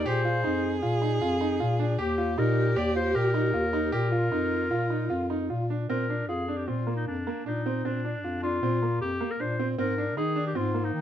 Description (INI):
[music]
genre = contemporary instrumental, chamber music in an uneven meter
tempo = 155 BPM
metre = 5/4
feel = straight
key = Bb mixolydian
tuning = A4 = 441 Hz
[part]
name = clear clarinet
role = melody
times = 0.0-11.0 s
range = D4 to D5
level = -31 LUFS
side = left 2 dB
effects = none
[part]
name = dark viola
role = second line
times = 0.0-5.7 s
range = F4 to Ab4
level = -31 LUFS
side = right 2 dB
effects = none
[part]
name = dark bass clarinet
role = bass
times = 0.0-11.0 s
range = Eb2 to Eb3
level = -29 LUFS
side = left 2 dB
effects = none
[part]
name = clear concert grand piano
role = arpeggios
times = 0.1-11.0 s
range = Bb3 to G4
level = -30 LUFS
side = right 2 dB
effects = none
[sound]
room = light reverb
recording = close, detailed microphones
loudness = -25 LUFS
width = side -10 dB against mid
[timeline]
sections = 0.0-5.9 A section; 5.9-11.0 B section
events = none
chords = 0.1 Bbsus2; 2.0 Eb; 3.9 Bb5; 5.9 Bbadd9; 9.8 Abadd9